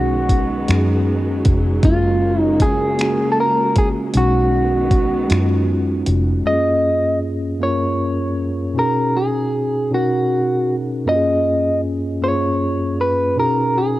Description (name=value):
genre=slow six-eight R&B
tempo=52 BPM (dotted quarters)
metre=6/8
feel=straight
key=F# major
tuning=A4 = 440 Hz
part: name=electric guitar at the edge of break-up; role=melody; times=0.0-14.0 s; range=E#4 to D#5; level=-19 LUFS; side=equal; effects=cassette tape
part: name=mellow tine electric piano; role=accompaniment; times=0.0-14.0 s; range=F#2 to A#4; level=-20 LUFS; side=equal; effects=medium stereo tremolo, cassette tape
part: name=warm studio string section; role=sustained chords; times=0.0-6.4 s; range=C#3 to B3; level=-27 LUFS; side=right 1 dB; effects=cassette tape
part: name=vintage muted fingered electric bass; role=bass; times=0.0-6.4 s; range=E#1 to F#2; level=-19 LUFS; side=equal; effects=none
part: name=dusty soul sampler-style drum kit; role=drums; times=0.3-6.2 s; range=finger snaps, hi-hat, kick drum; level=-18 LUFS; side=equal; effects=cassette tape
room=little or no reverb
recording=home recording on cassette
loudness=-15 LUFS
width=side -16 dB against mid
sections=0.0-6.4 A section; 6.4-14.0 B section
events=none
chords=0.0 B6; 1.8 F#maj9; 4.1 B6; 6.4 F#maj9; 8.8 B6; 11.1 F#maj9; 13.4 B6